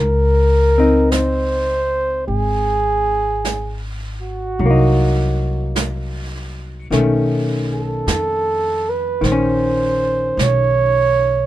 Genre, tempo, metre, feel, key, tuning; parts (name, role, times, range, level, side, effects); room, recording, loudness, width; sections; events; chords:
jazz ballad; 52 BPM; 4/4; swing 68% on 8ths; Db major; A4 = 440 Hz
mellow flugelhorn; melody; 0.0-11.5 s; Gb4 to Db5; -18 LUFS; right 2 dB
upright bass; bass; 0.0-11.5 s; Ab1 to F2; -20 LUFS; equal
hollow-body jazz guitar; accompaniment; 0.8-11.5 s; Eb3 to Eb4; -21 LUFS; left 2 dB
vintage brush drum kit; drums; 1.1-11.5 s; brushed snare drum, hi-hat, snare drum; -28 LUFS; right 4 dB
light reverb; minimal, uncompressed stereo recording; -15 LUFS; side -14 dB against mid
0.0-11.5 A section
0.0 Dbsus2; 4.6 Cm7b5; 6.9 Cb9; 9.2 Bbmadd9